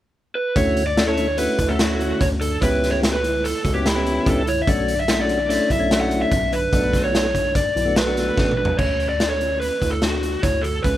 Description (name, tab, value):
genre	progressive instrumental, band music in an uneven meter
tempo	146 BPM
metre	5/4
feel	straight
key	unclear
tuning	A4 = 440 Hz
part	lead guitar through a small cranked amp	melody	0.4-11.0 s	E4 to F#5	-22 LUFS	equal	overdrive
part	percussive tonewheel organ	accompaniment	0.6-8.5 s	A3 to A4	-24 LUFS	left 1 dB	slow rotary speaker, slapback echo
part	mellow tine electric piano	arpeggios	0.6-11.0 s	C#4 to G4	-30 LUFS	equal	slow stereo tremolo
part	rubbery square bass	bass	0.6-11.0 s	A1 to D2	-26 LUFS	equal	none
part	raw garage drum kit	drums	0.6-10.9 s	crash cymbal, hi-hat, kick drum, snare drum, toms	-23 LUFS	equal	none
room	little or no reverb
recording	none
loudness	-18 LUFS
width	side -13 dB against mid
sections	0.6-8.8 A section; 8.8-11.0 B section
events	drum fill 8.4-8.8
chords	0.0 N.C.; 0.6 Dmaj7; 2.6 C#m7b5; 4.7 Bm9; 6.7 Bm11; 8.8 Dmaj7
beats	0.14 | 0.56 0.97 1.38 1.79 2.20 | 2.61 3.03 3.44 3.85 4.26 | 4.67 5.08 5.49 5.91 6.32 | 6.73 7.14 7.55 7.96 8.37 | 8.79 9.20 9.61 10.02 10.43 | 10.84